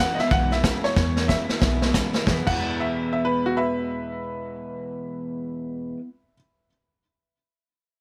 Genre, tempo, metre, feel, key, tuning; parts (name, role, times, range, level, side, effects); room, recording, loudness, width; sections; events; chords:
rockabilly; 184 BPM; 4/4; swing 62% on 8ths; E major; A4 = 440 Hz
bright upright piano; melody; 0.0-6.3 s; F#4 to F#5; -29 LUFS; equal; tape echo
picked steel-string acoustic guitar; accompaniment; 0.0-6.1 s; E2 to E4; -34 LUFS; equal
electric guitar through a small old amp; riff; 0.0-6.0 s; E2 to E4; -32 LUFS; equal
upright bass; bass; 0.0-5.9 s; B1 to E2; -32 LUFS; equal
vintage drum kit; drums; 0.2-2.5 s; crash cymbal, hi-hat, kick drum, snare drum; -26 LUFS; equal
light reverb; -24 LUFS; mono
0.0-2.3 A section; 2.3-4.9 B section
drum fill 1.0-2.3
0.0 E